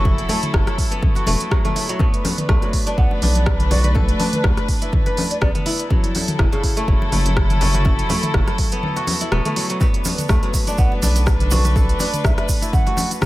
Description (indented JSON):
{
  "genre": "afro house",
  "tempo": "123 BPM",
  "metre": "4/4",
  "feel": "swing 55% on 16ths",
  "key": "B minor",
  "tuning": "A4 = 440 Hz",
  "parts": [
    { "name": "warm studio string section", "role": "sustained chords", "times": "0.0-13.3 s", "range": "F#3 to B4", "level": "-26 LUFS", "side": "left 1 dB", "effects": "sidechain pumping" },
    { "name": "kora", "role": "arpeggios", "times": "0.0-13.3 s", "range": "C#3 to B4", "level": "-26 LUFS", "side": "equal", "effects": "sidechain pumping, dub echo" },
    { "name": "round analog bass", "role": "bass", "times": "0.0-13.3 s", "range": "E1 to B1", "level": "-18 LUFS", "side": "equal", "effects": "sidechain pumping" },
    { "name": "electronic kick drum", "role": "drums", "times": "0.1-13.3 s", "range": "none", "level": "-18 LUFS", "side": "equal", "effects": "small room ambience" },
    { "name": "congas", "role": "percussion", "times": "0.1-13.3 s", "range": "none", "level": "-28 LUFS", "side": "left 2 dB", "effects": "analog delay" },
    { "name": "afro-pop drum kit", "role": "drums", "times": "0.2-13.3 s", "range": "hi-hat, rim click, toms", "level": "-24 LUFS", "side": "equal", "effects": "small room ambience" },
    { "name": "mellow hollow jazz flute", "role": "melody", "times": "3.0-5.5, 10.8-13.1 s", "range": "B4 to F#5", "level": "-30 LUFS", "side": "right 2 dB", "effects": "dub echo" },
    { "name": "tube shaker", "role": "percussion", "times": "9.8-13.3 s", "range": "none", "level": "-30 LUFS", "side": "right 4 dB", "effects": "none" }
  ],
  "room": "studio reverb",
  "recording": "echo-heavy mix",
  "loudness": "-16 LUFS",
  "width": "side -17 dB against mid",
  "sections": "0.0-13.3 A section",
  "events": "break 8.8-9.8",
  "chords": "0.0 F#m7; 2.0 Bm7; 5.9 F#m7; 9.8 Bm7",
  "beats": "| 0.05 0.54 1.02 1.51 | 2.00 2.49 2.98 3.46 | 3.95 4.44 4.93 5.42 | 5.90 6.39 6.88 7.37 | 7.86 8.34 8.83 9.32 | 9.81 10.29 10.78 11.27 | 11.76 12.24 12.73 13.22"
}